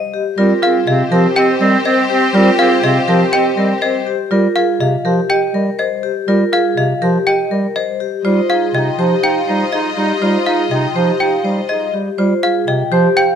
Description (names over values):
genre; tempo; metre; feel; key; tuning
classical, minimalist pattern music; 122 BPM; 4/4; straight; Ab major; A4 = 440 Hz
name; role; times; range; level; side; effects
vibraphone with medium hard mallets; melody; 0.0-13.4 s; G4 to G5; -19 LUFS; left 8 dB; none
clear clarinet; second line; 0.4-4.0, 8.3-11.9 s; C4 to Eb4; -19 LUFS; right 3 dB; none
mellow bass clarinet; accompaniment; 0.4-13.1 s; C3 to G3; -18 LUFS; right 1 dB; none
clear symphonic violin section; sustained chords; 0.4-4.0, 8.2-11.9 s; F4 to Eb5; -22 LUFS; left 3 dB; none
marimba with hard mallets; arpeggios; 0.4-13.4 s; F4 to C5; -19 LUFS; right 10 dB; none
trough xylophone with plastic mallets; arpeggios; 0.6-13.4 s; Eb5 to G5; -20 LUFS; left 3 dB; none
room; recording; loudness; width
moderate recital hall reverb, RT60 1.8 s; close, detailed microphones; -12 LUFS; side -8 dB against mid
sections
0.0-13.4 A section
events
none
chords
0.4 Abmaj9 (rootless); 8.2 Fm7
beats
| 0.38 0.87 1.36 1.85 | 2.35 2.84 3.33 3.82 | 4.31 4.81 5.30 5.79 | 6.28 6.77 7.26 7.76 | 8.25 8.74 9.23 9.72 | 10.22 10.71 11.20 11.69 | 12.18 12.68 13.17